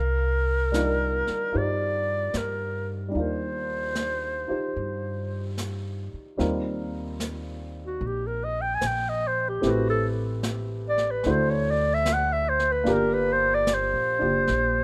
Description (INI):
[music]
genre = jazz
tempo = 74 BPM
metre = 4/4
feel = swing 68% on 8ths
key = C minor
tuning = A4 = 440 Hz
[part]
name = warm clarinet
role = melody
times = 0.0-14.8 s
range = Gb4 to Ab5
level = -28 LUFS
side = equal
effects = none
[part]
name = upright bass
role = bass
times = 0.0-14.8 s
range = Gb1 to G2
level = -32 LUFS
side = equal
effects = none
[part]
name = warm baby grand piano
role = accompaniment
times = 0.7-14.8 s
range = G3 to C5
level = -32 LUFS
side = equal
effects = none
[part]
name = jazz brush drum kit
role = drums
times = 0.7-14.8 s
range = brushed snare drum, hi-hat, snare drum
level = -38 LUFS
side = equal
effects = none
[sound]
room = small room ambience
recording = rough home demo mix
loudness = -26 LUFS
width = mono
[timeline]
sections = 0.0-6.4 A section; 6.4-14.8 B section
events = clarinet solo 6.4-14.8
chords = 0.0 Cm11; 6.4 Eb69; 9.6 Am7; 11.3 D7; 12.9 Gm7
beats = 0.74 1.54 2.34 | 3.14 3.95 4.75 5.57 | 6.39 7.20 8.01 8.82 | 9.63 10.44 11.25 12.06 | 12.87 13.67 14.48